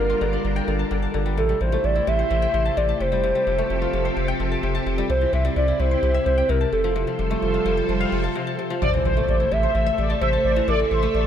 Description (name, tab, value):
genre	synth-pop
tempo	129 BPM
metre	4/4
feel	straight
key	unclear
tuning	A4 = 442 Hz
part	hollow clarinet-like synth lead	melody	0.0-11.3 s	A4 to E5	-23 LUFS	right 1 dB	chorus
part	soft string machine	sustained chords	0.0-11.3 s	C3 to E5	-27 LUFS	right 1 dB	ensemble chorus
part	kora	arpeggios	0.0-11.3 s	C3 to A5	-29 LUFS	left 7 dB	digital delay
part	round analog bass	bass	0.0-11.3 s	F1 to C2	-24 LUFS	equal	none
part	swell and impact	sound effects	6.9-10.7 s	none	-30 LUFS	right 2 dB	none
part	mellow synth brass	second line	8.8-11.2 s	C5 to E5	-27 LUFS	left 2 dB	chorus, phaser, digital delay
room	light reverb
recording	none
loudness	-19 LUFS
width	side -9 dB against mid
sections	0.0-8.8 A section; 8.8-11.3 B section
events	swell 6.9-8.8; break 8.4-8.8; impact 8.8-10.7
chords	0.0 Gm7; 1.4 Am7; 3.0 Fadd9; 5.1 C; 6.7 F; 8.8 Am